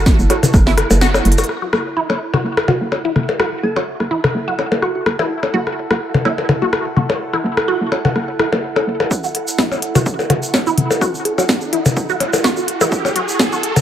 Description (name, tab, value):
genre	minimal techno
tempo	126 BPM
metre	4/4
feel	swing 55% on 16ths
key	F# minor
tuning	A4 = 440 Hz
part	hollow knocking FM bass	bass	0.0-9.1 s	F#1	-19 LUFS	equal	sidechain pumping, high-pass filter
part	warbly tape-like pad	texture	0.0-13.8 s	E4 to A5	-26 LUFS	right 3 dB	chorus, built-in reverb, sidechain pumping
part	electronic kick drum	drums	0.1-0.6, 9.1-13.5 s	none	-17 LUFS	equal	high-pass filter on kick
part	techno drum kit	drums	0.1-1.6, 9.3-13.8 s	crash cymbal, hi-hat, snare drum	-19 LUFS	equal	low-pass filter on hats, low-pass filter on snare, low-pass filter on cymbals, low-pass filter on room
part	egg shaker	percussion	0.1-1.5, 9.1-13.8 s	none	-27 LUFS	right 2 dB	none
part	resonant blip pluck	riff	0.3-13.5 s	E4 to A4	-22 LUFS	right 1 dB	phaser, cassette tape, sidechain pumping, dub echo
part	minimal click drum kit	percussion	0.3-13.8 s	percussion blips, rim click, toms	-18 LUFS	left 2 dB	dub echo
part	glassy wavetable pluck	melody	2.7-5.0, 10.3-12.6 s	F#4 to A4	-27 LUFS	right 2 dB	none
part	riser	sound effects	10.9-13.8 s	none	-26 LUFS	right 1 dB	none
room	light reverb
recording	echo-heavy mix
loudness	-14 LUFS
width	side -10 dB against mid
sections	0.0-1.5 A section; 1.5-9.1 B section; 9.1-13.8 C section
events	kick drops out 1.0-1.5; band accent 1.0; drum fill 1.3; build-up 9.1-13.8; riser 10.9-13.8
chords	0.0 F#m7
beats	0.06 0.54 1.01 | 1.49 1.97 2.44 2.92 | 3.40 3.87 4.35 4.82 | 5.30 5.78 6.25 6.73 | 7.21 7.68 8.16 8.63 | 9.11 9.59 10.06 10.54 | 11.01 11.49 11.97 12.44 | 12.92 13.39